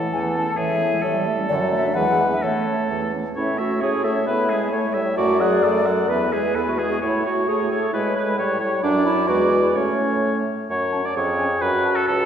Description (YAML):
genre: quick classical-period movement for wind quintet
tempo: 132 BPM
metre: 2/4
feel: straight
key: A major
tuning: A4 = 439 Hz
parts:
  - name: clear oboe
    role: second line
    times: 0.0-12.3 s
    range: G#4 to F#5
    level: -25 LUFS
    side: left 1 dB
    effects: none
  - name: clear French horn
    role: accompaniment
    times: 0.0-11.9 s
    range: E3 to F#4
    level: -27 LUFS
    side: right 1 dB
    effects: none
  - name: mellow clarinet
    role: accompaniment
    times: 0.0-12.3 s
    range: D3 to B4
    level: -24 LUFS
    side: right 2 dB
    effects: none
  - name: warm bassoon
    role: bass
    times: 0.0-12.3 s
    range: C#2 to A2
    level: -25 LUFS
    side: right 1 dB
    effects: none
  - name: mellow hollow silver concert flute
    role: melody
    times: 0.1-11.9 s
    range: B4 to A5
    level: -26 LUFS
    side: left 4 dB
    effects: none
room: wet concert hall reverb, RT60 1.8 s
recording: recorded in a church or concert hall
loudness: -18 LUFS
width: side -8 dB against mid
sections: 0.0-3.4 A section; 3.4-10.7 A section; 10.7-12.3 B section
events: none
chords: 0.0 A; 0.6 E/A; 1.0 A7; 1.5 D/F#; 2.0 E7; 2.4 A; 4.3 E/A; 4.7 A7; 5.2 D/F#; 6.1 E; 7.0 A; 7.9 E/A; 8.4 A7; 8.8 D/F#; 9.3 E7; 9.8 A; 10.7 F#5; 11.2 C#/E#; 11.6 F#m